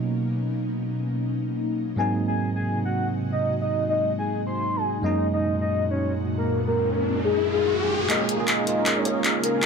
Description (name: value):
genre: future bass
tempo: 157 BPM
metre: 4/4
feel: swing 54% on 16ths, half-time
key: Db major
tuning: A4 = 440 Hz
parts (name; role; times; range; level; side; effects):
- bell-like tine electric piano; accompaniment; 0.0-9.7 s; Gb2 to Ab4; -27 LUFS; right 3 dB; auto-pan, tape echo
- ethereal airy pad; sustained chords; 0.0-9.7 s; Bb2 to Gb4; -30 LUFS; left 2 dB; ensemble chorus, built-in reverb
- soft octave-layered synth lead; melody; 2.0-9.7 s; Ab4 to C6; -26 LUFS; left 2 dB; chorus, phaser, tape echo
- riser; sound effects; 6.1-9.7 s; none; -30 LUFS; left 2 dB; none
- supersaw chords; riff; 8.1-9.7 s; Db4 to Bb5; -28 LUFS; right 1 dB; phaser, low-pass filter
- trap drum kit; drums; 8.1-9.7 s; handclaps, hi-hat; -24 LUFS; left 1 dB; high-pass filter on snare, low-pass filter on snare, high-pass filter on hats, low-pass filter on hats, high-pass filter on room, low-pass filter on room
room: light reverb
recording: dark, warm production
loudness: -22 LUFS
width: side -5 dB against mid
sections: 0.0-8.1 A section; 8.1-9.7 B section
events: riser 6.1-8.1, 8.1-9.7; build-up 8.1-9.7; drum fill 8.1-9.7; filter sweep on supersaw synth 8.1-9.7; filter sweep on ambient pad 8.1-9.7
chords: 0.0 Cbmaj9; 2.0 Ab7; 5.0 Gb69; 8.1 Db69